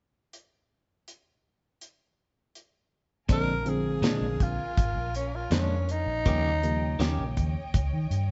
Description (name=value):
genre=straight-eighth soul blues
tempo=81 BPM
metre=4/4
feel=straight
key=unclear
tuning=A4 = 442 Hz
part: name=damped 70s drum kit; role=drums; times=0.3-8.3 s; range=hi-hat, kick drum, snare drum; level=-30 LUFS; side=equal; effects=none
part: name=growling tenor saxophone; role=melody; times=3.3-7.3 s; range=Db4 to Bb4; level=-33 LUFS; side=equal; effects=none
part: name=reed electric piano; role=accompaniment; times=3.3-7.6 s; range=Db3 to C4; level=-35 LUFS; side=equal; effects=none
part: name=clear studio string section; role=sustained chords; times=3.3-8.3 s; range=Bb4 to Ab5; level=-47 LUFS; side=equal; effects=none
part: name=clean electric guitar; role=stabs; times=3.3-7.2 s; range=Bb2 to G4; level=-38 LUFS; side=equal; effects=none
part: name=vintage muted fingered electric bass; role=bass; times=3.3-8.3 s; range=Ab1 to Eb3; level=-32 LUFS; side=equal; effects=none
room=moderate large studio reverb, RT60 1.3 s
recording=band playing live in one room, nothing above 7.8 kHz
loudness=-28 LUFS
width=mono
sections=0.3-3.3 A section; 3.3-8.3 B section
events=none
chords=0.3 N.C.; 3.3 Bb7; 6.3 Eb7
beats=| 0.32 1.06 1.80 2.55 | 3.29 4.03 4.77 5.51 | 6.25 6.99 7.73